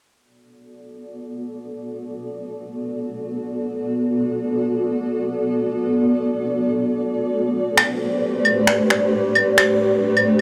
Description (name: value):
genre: future garage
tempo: free time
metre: none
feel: none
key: unclear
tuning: A4 = 435 Hz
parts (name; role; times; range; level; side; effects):
- granular cloud pad; sustained chords; 1.2-10.4 s; A3 to D5; -22 LUFS; equal; built-in reverb
- electronic finger snaps and claves; drums; 7.8-10.2 s; none; -19 LUFS; equal; overdrive, studio ambience
room: moderate huge ambient reverb, RT60 7.5 s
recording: none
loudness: -20 LUFS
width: mono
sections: 0.1-10.4 A section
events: fade-in on ambient pad 0.1-10.4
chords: 0.1 Bm7; 7.3 Am11